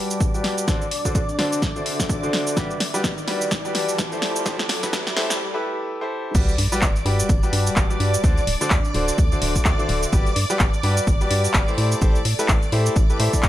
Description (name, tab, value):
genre	piano house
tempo	127 BPM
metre	4/4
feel	swing 58% on 16ths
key	G major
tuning	A4 = 439 Hz
part	string machine, violins	sustained chords	0.0-13.5 s	D5 to D6	-30 LUFS	equal	ensemble chorus, sidechain pumping
part	bright concert grand piano	riff	0.0-13.5 s	D3 to D5	-26 LUFS	left 1 dB	sidechain pumping, low-pass filter, digital delay
part	riser and sub drop	sound effects	0.5-8.2 s	none	-32 LUFS	equal	none
part	warbly tape-like pad	texture	0.0-13.5 s	G3 to B5	-32 LUFS	equal	chorus, built-in reverb, sidechain pumping
part	house drum kit	drums	0.1-13.5 s	crash cymbal, handclaps, hi-hat, shaker, snare drum	-25 LUFS	equal	small room ambience
part	electronic kick drum	drums	0.2-13.5 s	none	-21 LUFS	equal	small room ambience
part	organ-like FM bass	bass	6.3-13.5 s	D1 to A2	-22 LUFS	equal	sidechain pumping
room	little or no reverb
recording	high-pass filter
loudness	-18 LUFS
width	side -13 dB against mid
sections	0.0-6.3 A section; 6.3-13.5 B section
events	build-up 0.0-6.3; drum fill 0.0-5.4; filter sweep on grand piano 0.0-6.3; filter sweep on string machine 0.0-6.3; filter sweep 0.0-6.3; riser 0.5-5.4; break 5.4-6.3; drop 6.3-13.5; impact 6.3-8.2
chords	0.0 Gmaj7; 0.7 D7; 2.6 Gmaj7; 4.2 Am7; 6.3 Gmaj7; 8.2 D7; 10.1 Gmaj7; 11.8 Am7